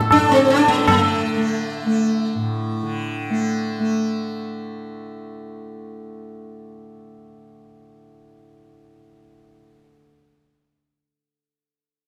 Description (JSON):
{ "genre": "indian classical, Hindustani", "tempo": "158 BPM", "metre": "4/4", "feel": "straight", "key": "unclear", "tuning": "A4 = 440 Hz", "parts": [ { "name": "sitar", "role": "melody", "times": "0.0-2.4 s", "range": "A3 to A4", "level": "-20 LUFS", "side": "equal", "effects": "none" }, { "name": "tanpura", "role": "drone", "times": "0.0-10.0 s", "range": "A2 to A3", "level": "-26 LUFS", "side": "equal", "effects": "none" }, { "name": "tabla", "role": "percussion", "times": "0.0-1.0 s", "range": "none", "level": "-21 LUFS", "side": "equal", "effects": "none" } ], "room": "wet recital hall reverb, RT60 1.6 s", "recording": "close, detailed microphones", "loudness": "-20 LUFS", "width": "mono", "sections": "0.9-3.9 A section", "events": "none", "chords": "none" }